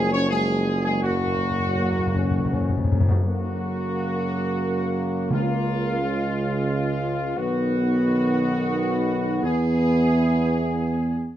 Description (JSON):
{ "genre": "classical", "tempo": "80-89 BPM", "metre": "3/4", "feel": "straight", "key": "F# major", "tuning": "A4 = 440 Hz", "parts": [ { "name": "clear trumpet section", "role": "melody", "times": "0.0-11.3 s", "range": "E#4 to C#5", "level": "-28 LUFS", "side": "left 1 dB", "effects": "none" }, { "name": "mellow trombone section", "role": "sustained chords", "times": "0.0-11.3 s", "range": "C#3 to C#4", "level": "-30 LUFS", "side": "right 2 dB", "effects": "none" }, { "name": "warm French horn section", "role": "sustained chords", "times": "0.0-11.3 s", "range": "E#3 to F#4", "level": "-27 LUFS", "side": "left 2 dB", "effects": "none" }, { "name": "warm tuba", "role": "bass", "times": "0.0-11.3 s", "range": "F#1 to F#2", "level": "-24 LUFS", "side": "right 2 dB", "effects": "none" }, { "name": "timpani", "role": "percussion", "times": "1.0-6.3 s", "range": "F#2 to C#3", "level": "-24 LUFS", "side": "left 1 dB", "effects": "none" } ], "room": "moderate large studio reverb, RT60 0.9 s", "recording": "none", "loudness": "-20 LUFS", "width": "side -12 dB against mid", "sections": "0.0-3.2 A section; 3.2-11.4 B section", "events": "timpani fill 1.0-3.2", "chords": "0.0 C#/F#; 1.0 F#; 5.3 C#; 7.4 B; 9.4 E" }